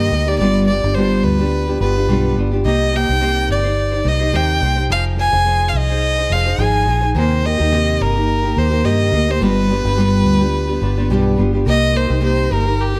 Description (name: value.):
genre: acoustic pop.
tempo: 107 BPM.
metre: 4/4.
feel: swing 55% on 16ths.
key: C minor.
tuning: A4 = 439 Hz.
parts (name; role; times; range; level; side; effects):
rich violin; melody; 0.0-13.0 s; G4 to Ab5; -22 LUFS; equal; delay.
nylon-string guitar; accompaniment; 0.0-13.0 s; G2 to C5; -21 LUFS; equal; double-tracked.
vintage muted fingered electric bass; bass; 0.0-13.0 s; F1 to G2; -21 LUFS; equal; none.
room: light reverb, studio reverb.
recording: none.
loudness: -16 LUFS.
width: mono.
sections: 0.0-11.7 A section; 11.7-13.0 B section.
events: none.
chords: 0.4 G7; 2.7 Cm7; 4.9 Fm7; 7.2 Cm7; 9.4 G7; 11.7 Cm7.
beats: | 0.40 0.96 1.53 2.09 | 2.65 3.22 3.78 4.34 | 4.91 5.47 6.03 6.60 | 7.16 7.72 8.28 8.85 | 9.41 9.97 10.54 11.10 | 11.66 12.22 12.79.